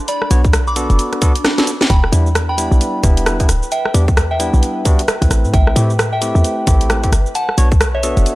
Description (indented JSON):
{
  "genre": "UK garage, two-step garage",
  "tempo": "132 BPM",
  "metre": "4/4",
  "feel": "swing 60% on 16ths",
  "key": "E minor",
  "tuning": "A4 = 436 Hz",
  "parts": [
    { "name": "ethereal airy pad", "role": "sustained chords", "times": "0.0-8.4 s", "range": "D4 to B4", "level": "-29 LUFS", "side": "left 2 dB", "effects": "ensemble chorus, built-in reverb, sidechain pumping" },
    { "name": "soft synth bell", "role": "melody", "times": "0.1-8.4 s", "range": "C#5 to D6", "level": "-22 LUFS", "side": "equal", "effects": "chorus" },
    { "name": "garage drum kit", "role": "drums", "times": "0.1-8.4 s", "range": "cabasa, hi-hat, rim click, snare drum", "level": "-19 LUFS", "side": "equal", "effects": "small room ambience" },
    { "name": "barky tine electric piano", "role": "stabs", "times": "0.3-8.4 s", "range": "G3 to C#5", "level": "-22 LUFS", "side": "equal", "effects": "none" },
    { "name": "short 808-style bass", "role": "bass", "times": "0.3-8.3 s", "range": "D1 to A2", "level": "-15 LUFS", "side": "equal", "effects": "sidechain pumping" },
    { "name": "electronic kick drum", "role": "drums", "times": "0.4-7.8 s", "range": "none", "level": "-14 LUFS", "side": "equal", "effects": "small room ambience" }
  ],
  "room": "digital ambience",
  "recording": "dry, gritty hardware recording",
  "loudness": "-12 LUFS",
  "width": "side -18 dB against mid",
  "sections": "0.0-8.4 A section",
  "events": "drum fill 1.4-1.9",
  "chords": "0.1 Bm7; 1.9 Em7; 5.3 Am7; 7.4 Bm7",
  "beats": "| 0.08 0.54 0.99 1.44 | 1.90 2.35 2.81 3.26 | 3.72 4.17 4.63 5.08 | 5.54 5.99 6.44 6.90 | 7.35 7.81 8.26"
}